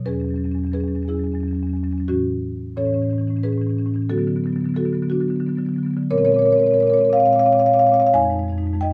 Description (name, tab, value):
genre	classical, contemporary piece for solo marimba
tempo	89 BPM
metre	3/4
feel	straight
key	unclear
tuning	A4 = 440 Hz
part	marimba with soft mallets	solo	0.0-8.9 s	E2 to Ab5	-20 LUFS	equal	none
room	light reverb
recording	close, detailed microphones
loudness	-20 LUFS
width	mono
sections	0.0-8.9 A section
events	none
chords	0.1 E69; 2.1 A6; 4.1 D6; 6.1 Bbm9; 8.1 Fm7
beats	| 0.07 0.75 1.42 | 2.09 2.77 3.44 | 4.11 4.78 5.44 | 6.11 6.79 7.46 | 8.14 8.82